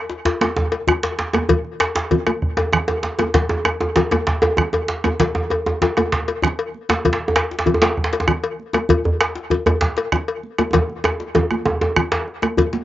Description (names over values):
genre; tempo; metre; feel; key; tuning
west african traditional, West African drum ensemble; 130 BPM (dotted quarters); 12/8; straight; none; none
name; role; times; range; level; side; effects
djembe; percussion; 0.1-12.8 s; none; -22 LUFS; left 3 dB; none
cowbell; percussion; 0.3-12.7 s; none; -23 LUFS; left 4 dB; none
djembe; percussion; 0.3-12.3 s; none; -20 LUFS; right 2 dB; slapback echo
bombo; percussion; 0.4-12.7 s; none; -22 LUFS; right 2 dB; none
congas; percussion; 0.4-12.8 s; none; -25 LUFS; right 5 dB; none
room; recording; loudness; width
light reverb; recorded outdoors, with no room sound, nothing above 7.6 kHz; -17 LUFS; side -14 dB against mid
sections
0.0-12.6 A section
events
drum fill 10.7-12.6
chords
none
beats
0.10 0.56 1.03 | 1.49 1.96 2.42 2.88 | 3.35 3.81 4.27 4.74 | 5.20 5.66 6.12 6.59 | 7.05 7.51 7.97 8.43 | 8.89 9.36 9.82 10.28 | 10.74 11.20 11.66 12.12 | 12.58